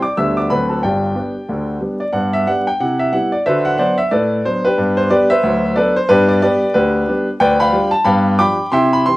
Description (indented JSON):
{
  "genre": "jazz, stride piano",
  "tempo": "182 BPM",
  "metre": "4/4",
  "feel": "swing 60% on 8ths",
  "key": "G major",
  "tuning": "A4 = 440 Hz",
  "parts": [
    { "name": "clear grand piano", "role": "solo", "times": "0.0-9.2 s", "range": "G1 to E6", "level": "-13 LUFS", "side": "equal", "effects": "none" }
  ],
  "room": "moderate studio reverb, RT60 0.8 s",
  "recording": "vinyl crackle",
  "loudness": "-13 LUFS",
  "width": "side -18 dB against mid",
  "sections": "0.0-2.1 A section; 2.1-9.2 B section",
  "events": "none",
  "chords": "0.2 G/D; 0.5 D7; 0.8 G; 2.8 Cmaj7; 3.5 D6; 4.8 G; 5.4 D13; 6.1 G; 7.4 G7/D; 8.1 G7"
}